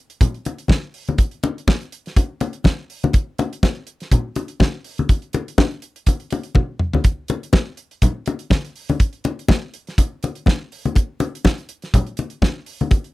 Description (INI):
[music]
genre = disco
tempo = 123 BPM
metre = 4/4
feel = swing 56% on 16ths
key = none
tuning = none
[part]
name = damped 70s drum kit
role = drums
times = 0.1-13.1 s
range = hi-hat, kick drum, snare drum, toms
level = -16 LUFS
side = equal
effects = none
[part]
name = congas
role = percussion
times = 0.2-13.0 s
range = none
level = -21 LUFS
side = left 3 dB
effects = none
[sound]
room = little or no reverb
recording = dry, close 1970s-style studio recording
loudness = -18 LUFS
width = side -18 dB against mid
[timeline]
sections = 0.0-13.1 A section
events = drum fill 6.6-7.0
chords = none